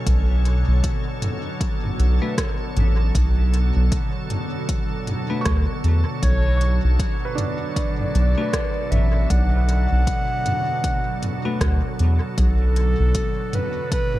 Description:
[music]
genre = ambient dub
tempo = 78 BPM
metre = 4/4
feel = swing 60% on 16ths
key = B minor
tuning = A4 = 440 Hz
[part]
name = soft additive organ-like pad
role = sustained chords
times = 0.0-14.2 s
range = B2 to C#5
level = -28 LUFS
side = right 1 dB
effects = ensemble chorus, built-in reverb
[part]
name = felt-muted upright piano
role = arpeggios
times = 0.0-14.2 s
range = C#4 to C#6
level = -35 LUFS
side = right 5 dB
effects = tape echo
[part]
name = soft dub sub bass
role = bass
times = 0.1-13.1 s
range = A1 to E2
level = -17 LUFS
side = equal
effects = none
[part]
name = electronic kick drum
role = drums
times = 0.1-14.1 s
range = none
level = -25 LUFS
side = equal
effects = overdrive
[part]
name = organic electronic drum kit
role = drums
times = 0.1-14.2 s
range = hi-hat, rim click, toms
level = -29 LUFS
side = equal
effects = dub echo
[part]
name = bell-like tine electric piano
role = stabs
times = 2.2-11.6 s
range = A3 to B4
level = -31 LUFS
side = left 4 dB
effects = phaser, dub echo
[part]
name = dark clarinet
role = melody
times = 6.2-14.2 s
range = A4 to F#5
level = -28 LUFS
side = equal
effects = dub echo
[sound]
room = digital ambience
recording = echo-heavy mix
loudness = -18 LUFS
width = side -15 dB against mid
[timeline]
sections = 0.0-14.2 A section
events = none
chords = 0.0 Bm7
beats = | 0.07 0.84 1.61 2.38 | 3.15 3.92 4.69 5.46 | 6.23 7.00 7.76 8.53 | 9.30 10.07 10.84 11.61 | 12.38 13.15 13.92

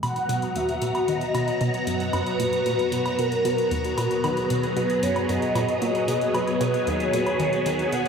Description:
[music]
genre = ambient, sequencer-driven space music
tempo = 114 BPM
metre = 4/4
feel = straight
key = B major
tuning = A4 = 440 Hz
[part]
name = mellow horn-like synth lead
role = melody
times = 0.0-8.1 s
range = A#4 to F#5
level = -26 LUFS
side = right 1 dB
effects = ensemble chorus, ping-pong delay
[part]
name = phased string machine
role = sustained chords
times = 0.1-8.1 s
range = F#3 to A#5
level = -25 LUFS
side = left 1 dB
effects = ensemble chorus, phaser
[part]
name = tight sequenced synth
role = riff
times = 0.0-8.1 s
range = D#2 to D#3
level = -28 LUFS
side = equal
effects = chorus, ping-pong delay
[part]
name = electronic hi-hat and woodblock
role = percussion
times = 0.0-8.1 s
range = none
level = -34 LUFS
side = equal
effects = ping-pong delay
[sound]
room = wet cathedral reverb, RT60 5.4 s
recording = dreamy mix soaked in reverb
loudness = -21 LUFS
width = side -6 dB against mid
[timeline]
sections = 0.0-8.1 A section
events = none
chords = 0.0 Bmaj7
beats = | 0.03 0.56 1.08 1.61 | 2.14 2.66 3.19 3.71 | 4.24 4.77 5.29 5.82 | 6.35 6.87 7.40 7.92

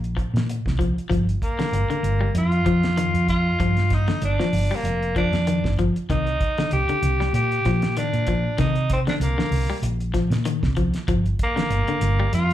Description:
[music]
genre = afrobeat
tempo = 96 BPM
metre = 4/4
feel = swing 55% on 16ths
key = C minor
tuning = A4 = 440 Hz
[part]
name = hollow-body short-scale fingered electric bass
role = bass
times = 0.0-12.5 s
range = F1 to C3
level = -22 LUFS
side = right 1 dB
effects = none
[part]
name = cloth-damped thuddy drum kit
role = drums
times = 0.0-12.5 s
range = hi-hat, kick drum, snare drum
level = -27 LUFS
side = equal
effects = none
[part]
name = electric guitar at the edge of break-up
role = arpeggios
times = 0.2-12.4 s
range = D3 to G3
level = -26 LUFS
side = left 4 dB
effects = slapback echo
[part]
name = raspy tenor saxophone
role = melody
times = 1.4-12.5 s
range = Bb3 to G4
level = -25 LUFS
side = equal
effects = slapback echo
[sound]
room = little or no reverb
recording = live gig heard through the venue's PA, club reverb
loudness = -19 LUFS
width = side -12 dB against mid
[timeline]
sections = 0.0-12.5 A section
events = none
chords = 0.0 C7(no3); 1.1 Gm7; 6.1 Cm9; 11.1 Gm7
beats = 0.48 | 1.10 1.73 2.35 2.97 | 3.60 4.22 4.85 5.47 | 6.09 6.72 7.34 7.97 | 8.59 9.21 9.84 10.46 | 11.09 11.71 12.34

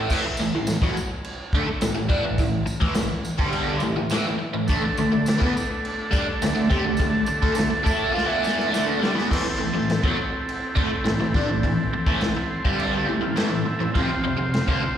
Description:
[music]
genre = garage rock duo or trio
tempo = 104 BPM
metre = 4/4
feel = straight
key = A minor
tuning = A4 = 439 Hz
[part]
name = combo organ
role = sustained chords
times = 0.0-0.1, 4.7-15.0 s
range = A3 to C6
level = -27 LUFS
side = right 1 dB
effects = none
[part]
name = biting overdriven guitar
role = riff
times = 0.0-14.9 s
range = F2 to A4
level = -23 LUFS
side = equal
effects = phaser, slapback echo
[part]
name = vintage drum kit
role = drums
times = 0.1-14.8 s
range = crash cymbal, kick drum, snare drum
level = -26 LUFS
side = equal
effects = none
[part]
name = tambourine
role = percussion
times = 0.1-9.1 s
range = none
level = -39 LUFS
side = right 1 dB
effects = none
[sound]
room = light reverb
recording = live gig heard through the venue's PA, recital hall reverb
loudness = -20 LUFS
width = side -9 dB against mid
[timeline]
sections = 0.1-9.3 A section; 9.3-15.0 B section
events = drum fill 8.1-9.3; transistor combo organ fill 12.2-13.9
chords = 0.1 A5; 4.7 D5; 9.3 Am; 13.9 F5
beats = | 0.09 0.66 1.23 1.81 | 2.38 2.96 3.53 4.11 | 4.68 5.26 5.83 6.41 | 6.99 7.57 8.15 8.72 | 9.30 9.88 10.46 11.04 | 11.62 12.21 12.79 13.37 | 13.95 14.53

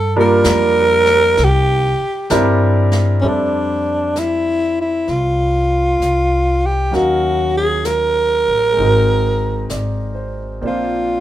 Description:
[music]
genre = jazz ballad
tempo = 65 BPM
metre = 4/4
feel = swing 67% on 8ths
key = F major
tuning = A4 = 441 Hz
[part]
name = growling alto saxophone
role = melody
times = 0.0-11.2 s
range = Db4 to Bb4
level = -15 LUFS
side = right 1 dB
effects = none
[part]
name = upright bass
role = bass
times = 0.0-11.2 s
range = Ab1 to G2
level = -19 LUFS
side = left 1 dB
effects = none
[part]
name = warm concert grand piano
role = accompaniment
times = 0.2-11.2 s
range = Gb3 to F5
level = -20 LUFS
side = right 1 dB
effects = none
[part]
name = jazz brush drum kit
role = drums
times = 0.4-11.2 s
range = brushed snare drum, hi-hat, snare drum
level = -25 LUFS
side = right 1 dB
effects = none
[sound]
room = light reverb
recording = minimal, uncompressed stereo recording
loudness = -13 LUFS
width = side -13 dB against mid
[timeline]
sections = 0.0-3.2 A section; 3.2-11.2 B section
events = alto saxophone solo 0.0-3.2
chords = 0.0 Gm7; 1.4 C9; 3.2 Fmaj13; 6.9 Ebm7; 8.8 Ab9; 10.6 Bbadd9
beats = 0.46 1.39 2.31 | 3.23 4.15 5.08 6.00 | 6.92 7.85 8.77 9.70 | 10.62

